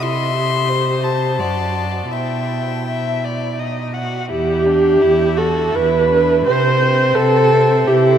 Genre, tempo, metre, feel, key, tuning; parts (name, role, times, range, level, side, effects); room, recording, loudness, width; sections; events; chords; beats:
classical, slow romantic movement for string quartet; 84 BPM; 3/4; uneven beats, rubato; E minor; A4 = 439 Hz
warm violin; melody; 0.0-8.2 s; E5 to C6; -26 LUFS; left 7 dB
warm violin; second line; 0.0-8.2 s; C4 to F#5; -23 LUFS; left 4 dB
dark viola; accompaniment; 0.0-8.2 s; D#4 to C5; -16 LUFS; right 1 dB
dark cello; bass; 0.0-8.2 s; E2 to C3; -21 LUFS; right 3 dB
wet huge ambient reverb, RT60 8.9 s; in a vast, echoing space; -14 LUFS; side -9 dB against mid
0.0-4.3 A section; 4.3-8.2 B section
0.0 C; 1.4 D/F#; 2.1 Em/B; 3.6 B; 4.3 Em; 6.5 C
| 0.02 0.70 1.39 | 2.13 2.88 3.60 | 4.31 5.02 5.75 | 6.46 7.17 7.88